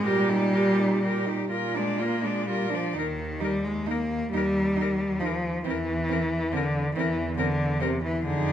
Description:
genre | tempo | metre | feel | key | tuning
classical, lyrical piece for cello ensemble | 41-47 BPM (dotted quarters) | 6/8 | rubato | Eb major | A4 = 440 Hz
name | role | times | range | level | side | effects
clear cello | melody | 0.0-8.5 s | G4 to D5 | -33 LUFS | left 7 dB | none
rich cello | second line | 0.0-8.5 s | C4 to G4 | -33 LUFS | right 11 dB | none
clear cello | accompaniment | 0.0-8.5 s | C3 to Bb3 | -26 LUFS | left 1 dB | none
rich cello | bass | 0.1-8.5 s | Eb2 to Bb2 | -32 LUFS | right 2 dB | none
room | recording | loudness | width
moderate recital hall reverb, RT60 1.7 s | none | -24 LUFS | side -10 dB against mid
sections
0.0-8.5 A section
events
none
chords
0.1 Eb/Bb; 1.5 Bb; 2.9 Eb; 5.7 N.C.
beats
| 0.06 1.51 | 2.95 4.33 | 5.65 6.95 | 8.25

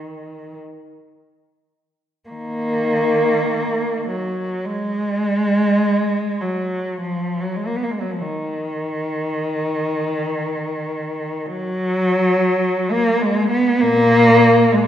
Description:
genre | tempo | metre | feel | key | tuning
classical, free, expressive piece for unaccompanied cello | 28-56 BPM | 4/4 | rubato | Eb minor | A4 = 441 Hz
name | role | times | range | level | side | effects
rich cello | solo | 0.0-14.9 s | Bb2 to Cb4 | -17 LUFS | equal | none
room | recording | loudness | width
wet scoring stage reverb, RT60 1.7 s | heard from further back in the room | -17 LUFS | side -10 dB against mid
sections
0.0-2.3 A section; 2.3-14.9 A section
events
none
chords
none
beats
0.56 | 2.30 3.51 4.67 5.83 | 7.03 8.22 9.33 10.40 | 11.49 12.62 13.83

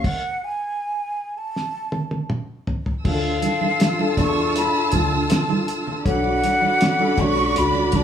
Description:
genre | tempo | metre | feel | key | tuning
lush 1970s-style soul | 80 BPM | 4/4 | straight | unclear | A4 = 437 Hz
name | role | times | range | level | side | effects
breathy jazz flute | melody | 0.0-8.0 s | F5 to C#6 | -23 LUFS | equal | none
warm studio string section | second line | 0.0-8.0 s | F4 to E6 | -25 LUFS | right 1 dB | none
tine electric piano | accompaniment | 0.0-8.0 s | G#3 to C#5 | -24 LUFS | left 2 dB | overdrive, fast stereo tremolo
cloth-damped thuddy drum kit | drums | 0.0-8.0 s | crash cymbal, hi-hat, kick drum, snare drum, toms | -23 LUFS | equal | none
rich double bass | bass | 3.1-8.0 s | B1 to D3 | -27 LUFS | equal | none
congas | percussion | 3.4-8.0 s | none | -27 LUFS | right 5 dB | none
room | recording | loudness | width
wet stone room reverb, RT60 1.0 s | band playing live in one room, small room reverb | -19 LUFS | side -9 dB against mid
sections
0.0-3.0 A section; 3.0-8.0 B section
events
stop 0.0-3.0; drum fill 1.5-3.0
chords
0.0 N.C.; 3.0 Dmadd9; 6.1 Bm7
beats
| 0.04 0.79 1.55 2.30 | 3.05 3.80 4.55 5.30 | 6.05 6.80 7.55

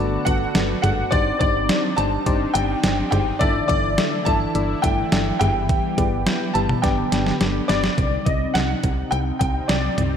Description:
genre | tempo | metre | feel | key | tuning
synth-pop | 105 BPM | 4/4 | straight | unclear | A4 = 441 Hz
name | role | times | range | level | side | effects
clear baby grand piano | melody | 0.0-10.2 s | D5 to A5 | -24 LUFS | equal | analog chorus
FM electric piano with tremolo | accompaniment | 0.0-7.9 s | B3 to G5 | -26 LUFS | left 5 dB | none
sweeping resonant pad | sustained chords | 0.0-10.2 s | C3 to G4 | -27 LUFS | equal | chorus
solid FM bass | bass | 0.0-10.2 s | G1 to C2 | -24 LUFS | right 1 dB | none
detuned 8-bit digital drum machine | drums | 0.3-10.1 s | cowbell, hi-hat, kick drum, snare drum, toms | -23 LUFS | right 1 dB | gated reverb
room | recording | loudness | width
moderate lush hall reverb, RT60 2.6 s | bright 1980s-style digital production | -18 LUFS | side -8 dB against mid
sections
0.0-8.0 A section; 8.0-10.2 B section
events
drum fill 6.8-8.0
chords
0.0 Bm7/G; 1.1 Cmadd9/G; 3.4 Dsus2/G; 5.4 Em/G; 6.8 G; 8.0 Cmadd9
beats
0.55 | 1.12 1.69 2.27 2.84 | 3.41 3.98 4.55 5.12 | 5.69 6.26 6.84 7.41 | 7.98 8.55 9.12 9.69

